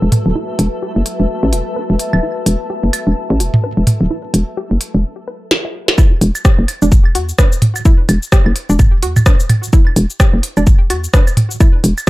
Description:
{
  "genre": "minimal techno",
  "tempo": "128 BPM",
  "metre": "4/4",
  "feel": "swing 59% on 16ths",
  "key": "unclear",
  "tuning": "A4 = 440 Hz",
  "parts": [
    { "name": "hollow knocking FM bass", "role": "bass", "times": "0.0-11.9 s", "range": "D1 to E2", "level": "-14 LUFS", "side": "equal", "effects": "sidechain pumping" },
    { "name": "deep dark ambient pad", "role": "texture", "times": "0.0-5.0 s", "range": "F#4 to A5", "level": "-24 LUFS", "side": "left 2 dB", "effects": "chorus, built-in reverb, sidechain pumping" },
    { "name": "flickering grainy texture", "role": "texture", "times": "0.0-5.0 s", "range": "A3 to A4", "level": "-30 LUFS", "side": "right 1 dB", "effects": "built-in reverb, sidechain pumping" },
    { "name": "minimal click drum kit", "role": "drums", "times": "0.1-12.1 s", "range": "hi-hat, rim click, shaker, snare drum", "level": "-19 LUFS", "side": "equal", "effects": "none" },
    { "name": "electronic toms and claves", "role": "percussion", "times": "0.1-12.1 s", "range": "none", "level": "-15 LUFS", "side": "right 1 dB", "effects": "digital delay" },
    { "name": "hollow square pluck", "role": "riff", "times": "0.4-12.1 s", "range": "D4 to E5", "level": "-22 LUFS", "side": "right 1 dB", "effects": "chorus, sidechain pumping, digital delay" },
    { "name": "electronic kick drum", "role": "drums", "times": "6.0-12.1 s", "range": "none", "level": "-9 LUFS", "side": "equal", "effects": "none" }
  ],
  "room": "little or no reverb",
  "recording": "dark, warm production",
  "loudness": "-11 LUFS",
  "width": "side -18 dB against mid",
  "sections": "0.0-6.0 A section; 6.0-12.1 B section",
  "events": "drum fill 5.5-6.0; drop 6.0-12.1",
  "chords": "0.0 Esus4; 6.0 E5"
}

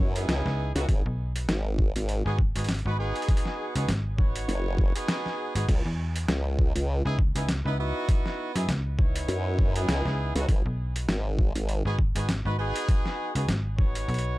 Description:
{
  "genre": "glitch hop",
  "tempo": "100 BPM",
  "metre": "4/4",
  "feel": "swing 56% on 16ths",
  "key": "C# minor",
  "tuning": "A4 = 438 Hz",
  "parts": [
    { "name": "warm horn section", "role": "stabs", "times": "0.0-14.4 s", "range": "B3 to C#5", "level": "-33 LUFS", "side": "right 1 dB", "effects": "sidechain pumping, tape echo" },
    { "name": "formant-sweep wobble bass", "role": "bass", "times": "0.0-11.8 s", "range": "F#1 to F#2", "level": "-27 LUFS", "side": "equal", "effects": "chorus" },
    { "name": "boom bap sampler-style drum kit", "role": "drums", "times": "0.2-14.2 s", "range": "crash cymbal, hi-hat, snare drum", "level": "-31 LUFS", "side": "equal", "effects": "overdrive" },
    { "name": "slap-like FM bass", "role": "bass", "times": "0.5-14.4 s", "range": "G#1 to F#2", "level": "-28 LUFS", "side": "equal", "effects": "none" },
    { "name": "electronic kick drum", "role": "drums", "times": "0.9-13.9 s", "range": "none", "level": "-24 LUFS", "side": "equal", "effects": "overdrive" }
  ],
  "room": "little or no reverb",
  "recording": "dry, gritty hardware recording",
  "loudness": "-24 LUFS",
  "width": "side -18 dB against mid",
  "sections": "0.0-14.4 A section",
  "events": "none",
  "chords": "0.0 C#m9; 0.9 G#m7; 5.7 C#m9; 10.5 G#m7"
}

